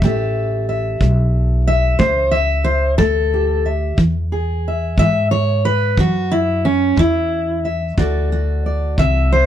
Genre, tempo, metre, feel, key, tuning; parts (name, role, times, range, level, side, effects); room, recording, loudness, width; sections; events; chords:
acoustic country blues, solo or duo; 60 BPM (dotted quarters); 12/8; straight; A mixolydian; A4 = 441 Hz
fingerpicked steel-string acoustic guitar; melody; 0.0-9.5 s; D3 to E5; -17 LUFS; equal
upright bass; bass; 0.0-9.5 s; A1 to G#2; -18 LUFS; equal
kick drum; drums; 0.0-9.1 s; -17 LUFS; equal
light reverb; dry, close 1970s-style studio recording; -15 LUFS; side -10 dB against mid
0.0-9.5 A section
steel-string acoustic guitar solo 0.0-9.5
0.0 A7; 4.0 E; 8.0 D7